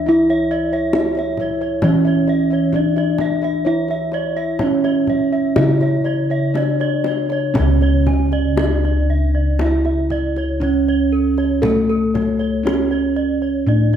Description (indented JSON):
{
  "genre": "Javanese gamelan",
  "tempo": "59-70 BPM",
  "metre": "4/4",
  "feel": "straight",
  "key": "unclear",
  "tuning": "A4 = 440 Hz",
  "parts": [
    { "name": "gamelan-type bronze metallophone", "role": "melody", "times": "0.0-14.0 s", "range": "A3 to E4", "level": "-19 LUFS", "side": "right 1 dB", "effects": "none" },
    { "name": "gamelan-type bossed gongs", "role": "arpeggios", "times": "0.0-7.6 s", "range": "C#5 to E5", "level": "-26 LUFS", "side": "left 2 dB", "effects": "none" },
    { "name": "gamelan-type bronze metallophone", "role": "arpeggios", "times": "0.0-14.0 s", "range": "A4 to G#5", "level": "-26 LUFS", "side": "right 3 dB", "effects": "none" },
    { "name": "gamelan-type bossed gongs", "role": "bass", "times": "0.0-14.0 s", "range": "C#2 to A4", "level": "-19 LUFS", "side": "equal", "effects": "none" },
    { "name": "kendang", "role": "percussion", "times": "0.9-14.0 s", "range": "none", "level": "-24 LUFS", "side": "left 2 dB", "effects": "none" }
  ],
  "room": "light reverb",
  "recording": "close, detailed microphones",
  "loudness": "-15 LUFS",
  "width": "side -9 dB against mid",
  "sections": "0.0-7.6 A section; 7.6-14.0 B section",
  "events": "none",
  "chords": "none",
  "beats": "| 0.07 0.95 1.83 2.74 | 3.66 4.60 5.57 6.55 | 7.56 8.57 9.59 10.61 | 11.62 12.64 13.66"
}